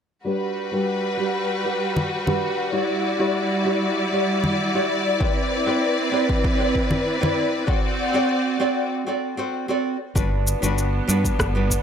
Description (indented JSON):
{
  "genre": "sunset chillout",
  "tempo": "97 BPM",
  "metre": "4/4",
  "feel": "straight",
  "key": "G major",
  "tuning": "A4 = 437 Hz",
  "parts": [
    { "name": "nylon-string guitar", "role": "accompaniment", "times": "0.2-11.8 s", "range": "G3 to D5", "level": "-24 LUFS", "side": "right 1 dB", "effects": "auto-pan, low-pass filter, analog delay" },
    { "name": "clear studio string section", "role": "sustained chords", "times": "0.2-11.8 s", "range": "G3 to D5", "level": "-24 LUFS", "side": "left 1 dB", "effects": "none" },
    { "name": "congas", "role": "percussion", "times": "2.0-7.3 s", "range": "none", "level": "-25 LUFS", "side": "left 1 dB", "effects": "none" },
    { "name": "electronic kick drum", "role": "drums", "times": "5.2-11.8 s", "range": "none", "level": "-23 LUFS", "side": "equal", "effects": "small room ambience" },
    { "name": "fretless electric bass", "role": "bass", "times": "10.2-11.8 s", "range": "G1 to G2", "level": "-23 LUFS", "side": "equal", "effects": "wide subtle chorus" },
    { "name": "electronic cabasa and rim click", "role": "drums", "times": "10.2-11.8 s", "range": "none", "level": "-25 LUFS", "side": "equal", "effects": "small room ambience" }
  ],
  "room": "light reverb, small room ambience",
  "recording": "dry, gritty hardware recording, transformer saturation",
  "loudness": "-20 LUFS",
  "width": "side -8 dB against mid",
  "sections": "0.3-10.2 A section; 10.2-11.8 B section",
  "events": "filter sweep on nylon-string guitar 0.3-10.2; break 8.9-10.2",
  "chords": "0.3 Gmaj7; 2.7 Em9; 5.2 Cmaj9; 7.7 D7; 10.2 Gmaj7"
}